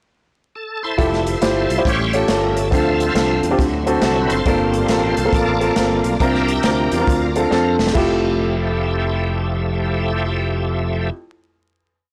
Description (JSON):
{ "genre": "uptempo gospel", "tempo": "137 BPM", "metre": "4/4", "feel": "swing 64% on 8ths", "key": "F major", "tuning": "A4 = 440 Hz", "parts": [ { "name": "bright tonewheel organ", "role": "sustained chords", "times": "0.6-11.1 s", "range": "F3 to E5", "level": "-26 LUFS", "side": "equal", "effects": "slow rotary speaker, chorus vibrato" }, { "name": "warm upright piano", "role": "accompaniment", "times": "1.0-11.1 s", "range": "F2 to C5", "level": "-21 LUFS", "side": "equal", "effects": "none" }, { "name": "modern bright fingered electric bass", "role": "bass", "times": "1.0-11.1 s", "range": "E1 to F2", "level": "-25 LUFS", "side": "equal", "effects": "tube saturation" }, { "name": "swinging big-band drum kit", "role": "drums", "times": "1.0-8.1 s", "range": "crash cymbal, hi-hat, kick drum, snare drum", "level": "-25 LUFS", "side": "equal", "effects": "none" } ], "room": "little or no reverb", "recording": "blown-out, overdriven recording, vinyl crackle, overdrive", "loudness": "-18 LUFS", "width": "mono", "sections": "0.0-1.0 pickup bar; 1.0-8.0 breakdown; 8.0-11.5 final chord", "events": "tonewheel organ solo 1.0-8.0; drum fill 7.5-8.0", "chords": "0.0 Esus4; 1.0 Fmaj9; 1.9 A7b13; 2.7 Dm7; 3.6 D7; 4.5 Gm11; 6.2 C9sus4; 8.0 Fmaj9" }